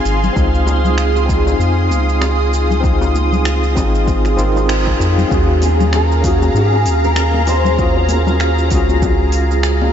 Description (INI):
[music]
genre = sunset chillout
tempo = 97 BPM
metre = 4/4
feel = swing 58% on 16ths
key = unclear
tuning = A4 = 439 Hz
[part]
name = overdriven tine electric piano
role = accompaniment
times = 0.0-9.9 s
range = C4 to F5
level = -20 LUFS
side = moving between left 6 dB and right 6 dB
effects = fast tremolo, auto-pan, tape echo
[part]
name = lush unison pad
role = sustained chords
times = 0.0-9.9 s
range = Ab4 to Eb6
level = -20 LUFS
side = right 1 dB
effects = chorus, phaser
[part]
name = round analog bass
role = bass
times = 0.1-9.9 s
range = Ab1 to Ab2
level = -16 LUFS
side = equal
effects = tube saturation
[part]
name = deep house drum kit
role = drums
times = 0.1-9.8 s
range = finger snaps, hi-hat, shaker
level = -26 LUFS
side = right 1 dB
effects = overdrive
[part]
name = congas and bongos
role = percussion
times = 0.2-9.9 s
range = none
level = -25 LUFS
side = left 5 dB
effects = none
[part]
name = electronic kick drum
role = drums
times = 0.4-9.2 s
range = none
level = -19 LUFS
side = equal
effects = overdrive
[part]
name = nylon-string guitar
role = melody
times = 5.3-9.0 s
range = Gb4 to C5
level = -21 LUFS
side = equal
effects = ensemble chorus, tape echo
[sound]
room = moderate huge ambient reverb, RT60 7.7 s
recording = dreamy mix soaked in reverb, nothing above 7.6 kHz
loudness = -12 LUFS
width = side -9 dB against mid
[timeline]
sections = 0.0-5.3 A section; 5.3-9.9 B section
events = filter sweep on tine electric piano 0.0-5.3; band accent 4.7-5.0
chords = 0.0 Dbmaj7; 5.3 Ebm11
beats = | 0.36 0.98 1.60 2.22 | 2.84 3.46 4.08 4.70 | 5.31 5.93 6.55 7.17 | 7.79 8.41 9.03 9.64